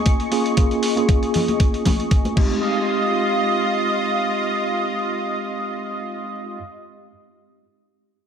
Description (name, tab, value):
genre	nu-disco, nu disco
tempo	117 BPM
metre	4/4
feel	swing 55% on 16ths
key	F minor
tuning	A4 = 440 Hz
part	tine electric piano	accompaniment	0.0-6.6 s	Ab3 to Ab4	-23 LUFS	equal	medium stereo tremolo, sidechain pumping, low-pass filter, tape echo
part	lush unison pad	sustained chords	0.0-6.6 s	F4 to Db6	-23 LUFS	right 1 dB	chorus, sidechain pumping
part	dusty soul sampler-style drum kit	drums	0.1-2.5 s	crash cymbal, hi-hat	-31 LUFS	equal	none
part	electronic kick drum	drums	0.1-2.5 s	none	-17 LUFS	equal	overdrive
part	congas	percussion	1.4-2.6 s	none	-26 LUFS	left 2 dB	none
room	light reverb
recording	echo-heavy mix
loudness	-18 LUFS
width	side -7 dB against mid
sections	0.0-2.6 A section; 2.6-6.7 B section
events	filter sweep on tine electric piano 0.0-2.6; filter sweep on analog synth pad 0.0-2.6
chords	0.0 Eb7sus4; 2.4 Fm7